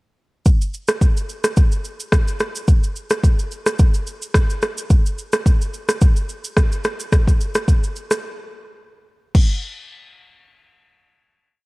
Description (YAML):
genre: afrobeats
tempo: 108 BPM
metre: 4/4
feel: swing 55% on 16ths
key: none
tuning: none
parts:
  - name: afro-pop drum kit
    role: drums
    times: 0.5-9.5 s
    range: crash cymbal, kick drum, rim click, shaker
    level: -16 LUFS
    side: equal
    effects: none
room: little or no reverb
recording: dry, gritty hardware recording, cassette tape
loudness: -16 LUFS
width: side -24 dB against mid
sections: 0.5-9.3 verse; 9.3-11.6 final hit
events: break 8.2-9.3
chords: none